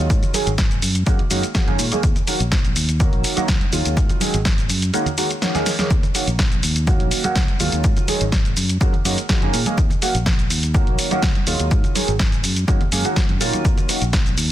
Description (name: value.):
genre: filtered disco house.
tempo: 124 BPM.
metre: 4/4.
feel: straight.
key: Eb minor.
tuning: A4 = 440 Hz.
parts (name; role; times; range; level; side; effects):
dark baby grand piano; accompaniment; 0.0-14.0 s; Eb3 to Ab4; -24 LUFS; right 2 dB; phaser, sidechain pumping, low-pass filter.
fingered electric bass; bass; 0.0-14.5 s; Ab1 to Bb2; -22 LUFS; equal; sidechain pumping, low-pass filter.
electronic kick drum; drums; 0.1-14.2 s; none; -19 LUFS; equal; none.
punchy analog drum machine; drums; 0.1-14.5 s; hi-hat, shaker, snare drum; -23 LUFS; equal; sidechain pumping on hats, sidechain pumping on perc.
tambourine and congas; percussion; 0.1-14.5 s; none; -32 LUFS; right 4 dB; sidechain pumping on perc, low-pass filter on perc.
room: digital ambience.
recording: dense, heavily limited modern master.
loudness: -16 LUFS.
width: side -13 dB against mid.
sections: 0.0-14.5 A section.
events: drum fill 5.5-5.9.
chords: 0.1 Ab7sus4; 0.8 Gb69; 2.0 Ebm7; 4.0 Ab7sus4; 4.7 Gb69; 5.9 Ebm7; 7.8 Ab7sus4; 8.6 Gb69; 9.8 Ebm7; 11.7 Ab7sus4; 12.4 Gb69; 13.6 Ebm7.